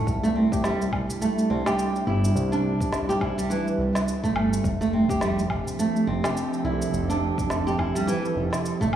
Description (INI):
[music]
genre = organic downtempo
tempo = 105 BPM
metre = 4/4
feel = swing 58% on 16ths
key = unclear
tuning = A4 = 440 Hz
[part]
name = warbly tape-like pad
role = sustained chords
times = 0.0-9.0 s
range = C3 to A4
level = -29 LUFS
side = right 1 dB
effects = chorus, built-in reverb, sidechain pumping
[part]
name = flamenco guitar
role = arpeggios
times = 0.0-9.0 s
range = E3 to G4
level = -25 LUFS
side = right 2 dB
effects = digital delay
[part]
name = smooth synth bass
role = bass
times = 0.0-9.0 s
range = F1 to C2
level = -28 LUFS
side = equal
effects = sidechain pumping
[part]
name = electronic kick drum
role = drums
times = 0.1-8.9 s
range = none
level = -31 LUFS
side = equal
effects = none
[part]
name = electronic shaker, snare drum and woodblock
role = drums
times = 0.1-9.0 s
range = none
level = -32 LUFS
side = equal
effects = none
[sound]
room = moderate lush hall reverb, RT60 2.8 s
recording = played on a big sound system in a bare room, large studio reverb, small room ambience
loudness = -22 LUFS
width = side -10 dB against mid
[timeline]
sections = 0.1-9.0 A section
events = none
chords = 0.1 C; 4.6 Fmaj7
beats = | 0.07 0.64 1.22 1.79 | 2.36 2.93 3.50 4.07 | 4.64 5.21 5.79 6.36 | 6.93 7.50 8.07 8.64